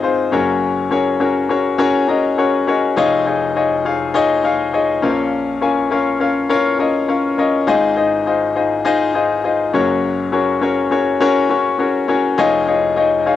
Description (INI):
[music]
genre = pop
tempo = 102 BPM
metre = 4/4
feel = swing 55% on 16ths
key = unclear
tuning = A4 = 440 Hz
[part]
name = warm grand piano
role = solo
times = 0.0-13.4 s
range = F1 to Bb5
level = -14 LUFS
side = left 4 dB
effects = cassette tape
[sound]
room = wet booth ambience, RT60 0.2 s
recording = home recording on cassette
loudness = -14 LUFS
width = side -12 dB against mid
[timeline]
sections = 0.0-13.4 A section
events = grand piano fill 1.8-3.0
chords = 0.3 Gbadd9; 3.0 Dbadd9/F; 5.0 Bbm; 7.7 Ab6; 9.7 Gbadd9; 12.4 Dbadd9/F